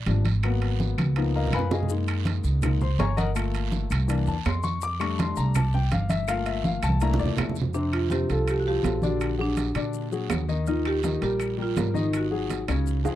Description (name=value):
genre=Afro-Cuban jazz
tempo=164 BPM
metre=4/4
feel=straight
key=unclear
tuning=A4 = 439 Hz
part: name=warm baby grand piano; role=accompaniment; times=0.0-13.2 s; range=C3 to D6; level=-29 LUFS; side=left 7 dB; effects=none
part: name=upright bass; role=bass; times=0.0-13.2 s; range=G1 to Bb2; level=-26 LUFS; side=right 1 dB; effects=none
part: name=congas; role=percussion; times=0.1-13.2 s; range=none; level=-30 LUFS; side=right 2 dB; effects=none
part: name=guiro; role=percussion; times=0.1-13.2 s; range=none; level=-42 LUFS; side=right 24 dB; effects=none
part: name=timbales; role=percussion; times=0.1-13.1 s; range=none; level=-34 LUFS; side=right 9 dB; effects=none
part: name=claves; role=percussion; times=0.4-12.9 s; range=none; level=-40 LUFS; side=left 17 dB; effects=none
part: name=maracas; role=percussion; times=1.9-13.2 s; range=none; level=-44 LUFS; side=left 14 dB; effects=none
part: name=marimba with hard mallets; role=melody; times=7.7-12.8 s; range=D4 to A4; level=-28 LUFS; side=right 2 dB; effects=none
room=little or no reverb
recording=dry, close 1970s-style studio recording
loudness=-23 LUFS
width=side -13 dB against mid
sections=0.0-7.7 A section; 7.7-13.2 B section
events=grand piano solo 0.0-7.7; drum fill 1.0-1.9, 6.6-7.7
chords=0.4 Abm9; 1.2 Db13; 1.9 Gb69; 3.4 Gm9; 4.1 C9; 4.8 F6; 6.3 Gm7; 7.0 C13; 7.7 F6; 9.2 Bbaug7; 10.7 Ebadd9; 12.1 Ab5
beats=0.07 | 0.43 0.80 1.17 1.53 | 1.90 2.26 2.63 3.00 | 3.36 3.73 4.09 4.46 | 4.82 5.19 5.55 5.92 | 6.28 6.65 7.01 7.38 | 7.75 8.11 8.48 8.84 | 9.21 9.57 9.94 10.31 | 10.67 11.04 11.41 11.77 | 12.14 12.51 12.87